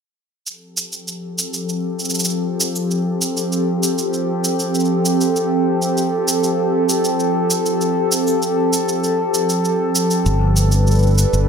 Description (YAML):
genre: folktronica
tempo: 98 BPM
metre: 4/4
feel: straight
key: F lydian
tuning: A4 = 441 Hz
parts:
  - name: warbly tape-like pad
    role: sustained chords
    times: 1.1-11.5 s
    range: F3 to B4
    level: -18 LUFS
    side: equal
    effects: chorus, built-in reverb
  - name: cabasa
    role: drums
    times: 0.5-11.5 s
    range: none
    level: -22 LUFS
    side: right 2 dB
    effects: none
  - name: modern bright fingered electric bass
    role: bass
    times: 10.3-11.5 s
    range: G1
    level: -14 LUFS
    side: equal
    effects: none
room: light reverb, digital ambience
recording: none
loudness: -16 LUFS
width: side -6 dB against mid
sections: 0.5-11.5 A section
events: none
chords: 0.5 Fadd9; 10.3 Gadd9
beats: | 0.47 1.08 1.69 2.30 | 2.91 3.53 4.14 4.75 | 5.36 5.97 6.59 7.20 | 7.81 8.42 9.04 9.65 | 10.26 10.87